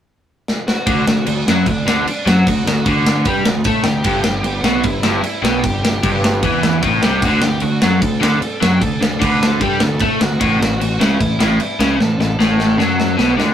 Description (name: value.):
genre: punk rock.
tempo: 151 BPM.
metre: 4/4.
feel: straight.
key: D major.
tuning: A4 = 439 Hz.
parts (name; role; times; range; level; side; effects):
tight metal drum kit; drums; 0.5-13.5 s; crash cymbal, kick drum, snare drum; -18 LUFS; equal; none.
smooth overdriven lead guitar; melody; 0.7-13.4 s; D4 to B5; -25 LUFS; equal; none.
crunchy overdriven guitar; riff; 0.9-13.5 s; G2 to A3; -17 LUFS; equal; none.
fuzz picked electric bass; bass; 0.9-13.5 s; G1 to A2; -20 LUFS; equal; overdrive.
room: moderate booth ambience, RT60 0.3 s.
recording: rough rehearsal-room recording.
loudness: -13 LUFS.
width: side -9 dB against mid.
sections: 0.9-13.5 A section.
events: drum fill 0.5-0.9, 12.0-13.5.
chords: 0.0 N.C.; 0.9 D; 4.1 G69; 7.2 D; 10.4 A5.